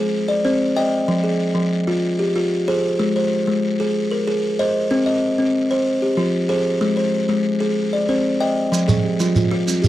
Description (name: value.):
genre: southern african traditional, mbira-style interlocking cycle.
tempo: 126 BPM (dotted quarters).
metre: 12/8.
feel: straight.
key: F dorian.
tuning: A4 = 445 Hz.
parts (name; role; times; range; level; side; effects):
buzzing kalimba; arpeggios; 0.0-9.9 s; F3 to G5; -17 LUFS; equal; none.
shekere; percussion; 8.7-9.9 s; none; -20 LUFS; right 2 dB; none.
kalimba; arpeggios; 8.9-9.9 s; F3 to Ab4; -23 LUFS; right 6 dB; none.
room: little or no reverb.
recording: dry, close 1970s-style studio recording.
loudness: -17 LUFS.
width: side -14 dB against mid.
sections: 0.0-8.7 A section; 8.7-9.9 A section.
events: none.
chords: 0.1 Cm; 1.1 Fm; 3.0 Ab; 4.9 Cm; 5.9 Fm; 6.8 Ab; 7.8 Cm; 8.7 Fm.